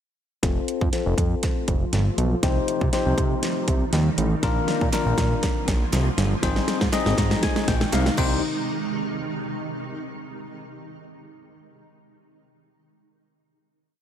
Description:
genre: dance-pop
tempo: 120 BPM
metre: 4/4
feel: straight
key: unclear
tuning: A4 = 440 Hz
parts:
  - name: bell-like tine electric piano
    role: accompaniment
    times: 0.4-8.4 s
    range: Bb3 to Bb5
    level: -27 LUFS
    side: left 5 dB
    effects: wide subtle chorus, sidechain pumping, low-pass filter
  - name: granular cloud pad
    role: sustained chords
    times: 1.6-8.4 s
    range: C3 to F4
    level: -30 LUFS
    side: right 1 dB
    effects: built-in reverb, ensemble chorus, sidechain pumping, low-pass filter
  - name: fat analog bass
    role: bass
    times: 0.4-8.4 s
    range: F1 to C3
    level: -23 LUFS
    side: equal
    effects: sidechain pumping
  - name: pop drum kit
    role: drums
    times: 0.4-8.3 s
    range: crash cymbal, hi-hat, kick drum, snare drum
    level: -24 LUFS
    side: equal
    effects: none
  - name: group handclap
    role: percussion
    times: 4.9-8.4 s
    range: none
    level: -38 LUFS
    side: right 4 dB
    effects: none
room: moderate lush hall reverb, RT60 1.8 s, digital ambience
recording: bright 1980s-style digital production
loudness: -20 LUFS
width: side -9 dB against mid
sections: 0.4-8.4 build; 8.4-10.4 final hit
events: build-up 0.4-8.4; drum fill 0.4-8.4; filter sweep 0.4-8.4; tine electric piano fill 6.9-8.4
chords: 0.4 F; 2.4 Cm; 4.4 Bb; 6.4 Ab; 8.2 Cm; 8.4 N.C.

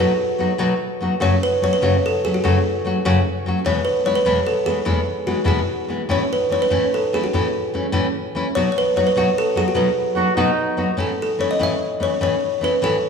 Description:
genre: mexican folk, mariachi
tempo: 98 BPM (dotted quarters)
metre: 6/8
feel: straight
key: unclear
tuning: A4 = 440 Hz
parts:
  - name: buzzing kalimba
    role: melody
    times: 0.0-13.1 s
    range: F#4 to E5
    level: -20 LUFS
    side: equal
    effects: none
  - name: nylon-string guitar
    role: accompaniment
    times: 0.0-13.0 s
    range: E2 to F#4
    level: -20 LUFS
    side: left 1 dB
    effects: none
  - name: mellow trumpet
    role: second line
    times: 10.2-10.8 s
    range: D#4 to F#4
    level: -23 LUFS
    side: right 4 dB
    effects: none
room: moderate concert hall reverb, RT60 2.2 s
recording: small room ambience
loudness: -17 LUFS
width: side -6 dB against mid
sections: 0.0-13.1 A section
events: none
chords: 0.0 B; 1.2 F#m; 3.7 E; 6.1 A; 8.5 B; 11.0 A

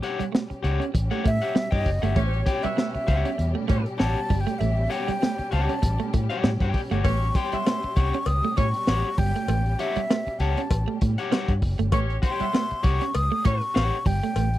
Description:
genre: funk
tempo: 98 BPM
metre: 4/4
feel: swing 56% on 16ths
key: A mixolydian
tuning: A4 = 439 Hz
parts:
  - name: electric guitar at the edge of break-up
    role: accompaniment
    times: 0.0-14.0 s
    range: G4 to G5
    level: -30 LUFS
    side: left 6 dB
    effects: none
  - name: warm studio string section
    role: sustained chords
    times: 0.0-14.6 s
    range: B2 to G4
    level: -36 LUFS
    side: left 1 dB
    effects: none
  - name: clean electric guitar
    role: riff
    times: 0.0-14.5 s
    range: G3 to C#4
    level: -30 LUFS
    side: right 10 dB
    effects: tremolo
  - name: crunchy breakbeat drum kit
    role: drums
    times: 0.0-14.6 s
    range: hi-hat, kick drum, snare drum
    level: -23 LUFS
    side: equal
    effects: none
  - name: vintage muted fingered electric bass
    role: bass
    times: 0.2-14.6 s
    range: F#1 to A2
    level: -25 LUFS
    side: equal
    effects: none
  - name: breathy mellow concert flute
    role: melody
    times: 1.3-14.6 s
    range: C5 to D#6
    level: -28 LUFS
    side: left 1 dB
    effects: none
  - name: mellow horn section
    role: second line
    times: 2.2-13.6 s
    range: B3 to E5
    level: -32 LUFS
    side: equal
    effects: none
  - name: cowbell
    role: percussion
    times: 7.0-14.5 s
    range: none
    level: -35 LUFS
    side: left 8 dB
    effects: none
room: little or no reverb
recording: dry, close 1970s-style studio recording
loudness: -22 LUFS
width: side -14 dB against mid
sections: 0.0-14.6 A section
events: flute solo 0.0-14.6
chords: 0.0 A13

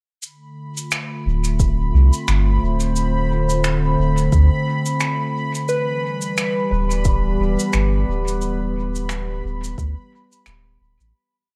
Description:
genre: ambient dub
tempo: 88 BPM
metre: 4/4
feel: swing 57% on 16ths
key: D dorian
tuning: A4 = 440 Hz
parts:
  - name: warbly tape-like pad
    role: sustained chords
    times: 0.5-11.1 s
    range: D3 to C5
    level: -26 LUFS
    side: equal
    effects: chorus, built-in reverb
  - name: cabasa and finger snaps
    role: drums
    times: 0.2-11.1 s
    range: none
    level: -28 LUFS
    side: equal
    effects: dub echo
  - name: bubbling stepped-filter texture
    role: texture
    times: 0.7-11.2 s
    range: B5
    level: -32 LUFS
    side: equal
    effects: chorus, built-in reverb
  - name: soft dub sub bass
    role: bass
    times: 1.3-11.1 s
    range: D1 to D2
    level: -21 LUFS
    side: equal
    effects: none
  - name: electronic kick drum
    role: drums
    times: 1.6-9.9 s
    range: none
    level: -23 LUFS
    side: equal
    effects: none
  - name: soft synth bell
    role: arpeggios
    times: 5.7-11.2 s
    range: B4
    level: -29 LUFS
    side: equal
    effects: chorus, phaser, tape echo
room: light reverb, small room ambience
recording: none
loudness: -20 LUFS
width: mono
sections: 0.2-11.1 groove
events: fade-out 7.5-11.1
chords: 0.2 Dm7; 5.7 Em/D

